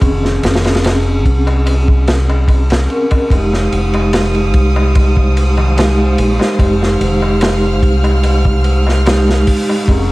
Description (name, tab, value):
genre	trip hop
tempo	73 BPM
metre	4/4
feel	swing 53% on 16ths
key	F minor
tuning	A4 = 440 Hz
part	vibraphone with soft mallets	accompaniment	0.0-10.1 s	Ab3 to Bb4	-16 LUFS	equal	harmonic tremolo, tape echo
part	deep dub fingered electric bass	bass	0.0-10.1 s	F1 to C2	-14 LUFS	equal	none
part	crunchy breakbeat drum kit	drums	0.0-10.1 s	hi-hat, kick drum, ride cymbal, snare drum	-16 LUFS	equal	none
part	darbuka	percussion	0.0-10.1 s	none	-26 LUFS	left 2 dB	none
part	clear studio violin section	sustained chords	3.3-10.1 s	Bb4 to F6	-23 LUFS	right 1 dB	none
room	small room ambience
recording	vinyl crackle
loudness	-10 LUFS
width	side -20 dB against mid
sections	0.0-10.1 A section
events	none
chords	0.0 Bbm7/F (rootless); 3.3 Fm7